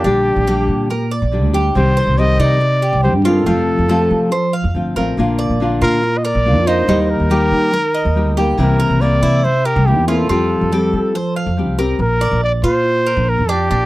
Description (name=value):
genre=latin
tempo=141 BPM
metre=4/4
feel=straight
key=Bb major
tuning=A4 = 440 Hz
part: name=breathy trumpet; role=melody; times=0.0-13.9 s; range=G4 to Eb5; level=-18 LUFS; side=equal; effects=none
part: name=nylon-string guitar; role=accompaniment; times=0.0-12.0 s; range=C3 to G4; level=-18 LUFS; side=left 2 dB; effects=none
part: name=Cuban tres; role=arpeggios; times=0.0-13.9 s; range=D4 to F5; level=-21 LUFS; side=right 2 dB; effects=none
part: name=upright bass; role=bass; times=0.0-13.9 s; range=G1 to F3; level=-17 LUFS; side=equal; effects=none
room=little or no reverb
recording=dry, close 1970s-style studio recording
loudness=-13 LUFS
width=side -17 dB against mid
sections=0.0-12.0 A section; 12.0-13.9 A section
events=none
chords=0.0 Gm/Bb; 1.8 Cm; 3.5 F; 5.2 Bb; 6.9 Eb; 8.6 C7; 10.3 Fadd9; 12.0 Bb